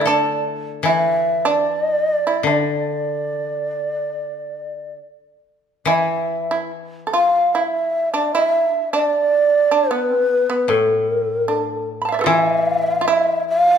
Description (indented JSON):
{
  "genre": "japanese traditional, Japanese chamber music",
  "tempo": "66-78 BPM",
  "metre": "4/4",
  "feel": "rubato",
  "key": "D kumoi",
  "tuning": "A4 = 442 Hz",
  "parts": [
    { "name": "breathy mellow long shakuhachi", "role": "melody", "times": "0.0-13.8 s", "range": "A4 to F5", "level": "-18 LUFS", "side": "equal", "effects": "none" },
    { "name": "shamisen", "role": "second line", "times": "0.0-13.8 s", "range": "A3 to B5", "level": "-22 LUFS", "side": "right 4 dB", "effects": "none" },
    { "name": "koto", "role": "accompaniment", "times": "0.0-13.8 s", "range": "A2 to A4", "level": "-23 LUFS", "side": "left 5 dB", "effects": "none" }
  ],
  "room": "moderate recital hall reverb, RT60 1.6 s",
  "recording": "minimal, uncompressed stereo recording",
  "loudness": "-16 LUFS",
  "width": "side -8 dB against mid",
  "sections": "0.0-5.9 A section; 5.9-13.8 B section",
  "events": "none",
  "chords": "none"
}